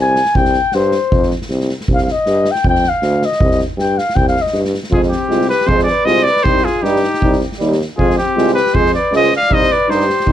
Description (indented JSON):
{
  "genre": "balkan folk, Balkan brass band",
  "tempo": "157 BPM",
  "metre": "2/4",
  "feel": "swing 55% on 16ths",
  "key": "C harmonic minor",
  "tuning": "A4 = 440 Hz",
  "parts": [
    { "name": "mellow flugelhorn", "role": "second line", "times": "0.0-10.3 s", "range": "C4 to Ab5", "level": "-18 LUFS", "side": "left 4 dB", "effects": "none" },
    { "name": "clear tuba", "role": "bass", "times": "0.0-10.3 s", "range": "C2 to G2", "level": "-18 LUFS", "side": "equal", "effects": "none" },
    { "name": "street-band drum kit", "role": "percussion", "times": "0.2-10.3 s", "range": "kick drum, snare drum", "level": "-20 LUFS", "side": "right 1 dB", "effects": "none" },
    { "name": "warm trumpet", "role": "melody", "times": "4.9-10.3 s", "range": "G4 to F5", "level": "-15 LUFS", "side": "right 1 dB", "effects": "plate reverb" },
    { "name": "clear euphonium", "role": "accompaniment", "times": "4.9-10.3 s", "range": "G3 to Ab3", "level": "-21 LUFS", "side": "right 6 dB", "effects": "none" },
    { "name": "warm trombone", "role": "accompaniment", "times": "4.9-10.3 s", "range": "Eb4 to F4", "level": "-22 LUFS", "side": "left 2 dB", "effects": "none" }
  ],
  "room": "light reverb",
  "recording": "dark, warm production",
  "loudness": "-12 LUFS",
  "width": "side -11 dB against mid",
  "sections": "0.0-4.9 A section; 4.9-10.3 B section",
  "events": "flugelhorn solo 0.0-4.9",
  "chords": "0.4 C5; 1.1 F5; 1.9 Cm; 2.6 Dmadd11; 3.4 C5; 4.9 Fm; 6.5 Cm; 8.0 Fm; 9.5 Cm",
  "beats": "| 0.36 0.74 | 1.12 1.50 | 1.89 2.27 | 2.65 3.03 | 3.41 3.79 | 4.17 4.55 | 4.93 5.31 | 5.69 6.07 | 6.45 6.83 | 7.22 7.60 | 7.98 8.36 | 8.74 9.13 | 9.51 9.89 | 10.27"
}